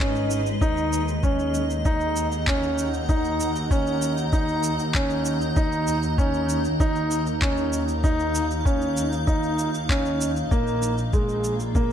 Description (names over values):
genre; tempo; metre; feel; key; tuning
piano and strings electronica; 97 BPM; 4/4; straight; Eb minor; A4 = 440 Hz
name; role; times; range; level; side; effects
granular cloud pad; sustained chords; 0.0-11.9 s; Ab3 to Bb5; -30 LUFS; equal; built-in reverb
dark grand piano; riff; 0.0-11.9 s; Ab3 to Eb4; -25 LUFS; equal; ping-pong delay
warm chamber double bass section; bass; 0.0-11.9 s; Ab1 to Eb2; -28 LUFS; equal; tube saturation, sidechain pumping
electronic handclaps and shaker; drums; 0.0-11.9 s; none; -31 LUFS; right 1 dB; none
electronic kick drum; drums; 0.0-11.9 s; none; -23 LUFS; equal; none
swell; sound effects; 0.1-0.6 s; none; -36 LUFS; right 4 dB; none
room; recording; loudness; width
light reverb; dark, warm production; -21 LUFS; side -9 dB against mid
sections
0.0-11.9 A section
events
swell 0.1-0.6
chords
0.0 Abm; 0.6 Ebm; 10.5 Bb7